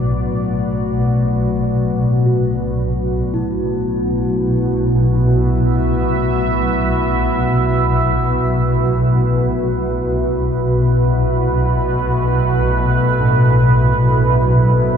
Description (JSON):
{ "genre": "dark ambient drone", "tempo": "free time", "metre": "none", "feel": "none", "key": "B minor", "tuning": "A4 = 439 Hz", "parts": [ { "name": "deep dark ambient pad", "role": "sustained chords", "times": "0.0-15.0 s", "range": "B2 to E5", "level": "-19 LUFS", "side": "right 1 dB", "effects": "chorus, built-in reverb" }, { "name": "bronze singing bowl", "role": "arpeggios", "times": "0.0-15.0 s", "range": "A2 to F#4", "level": "-22 LUFS", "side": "left 1 dB", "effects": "ping-pong delay" }, { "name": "swarming drone", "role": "drone", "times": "0.0-15.0 s", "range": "B1 to B2", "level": "-17 LUFS", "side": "equal", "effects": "built-in reverb" } ], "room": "wet cathedral reverb, RT60 6.4 s", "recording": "in a vast, echoing space", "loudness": "-14 LUFS", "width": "side -7 dB against mid", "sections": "0.0-15.0 A section", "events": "fade-in on ambient pad 0.0-15.0; filter sweep on synth drone 0.0-15.0", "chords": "0.0 Bm; 10.2 Am/B" }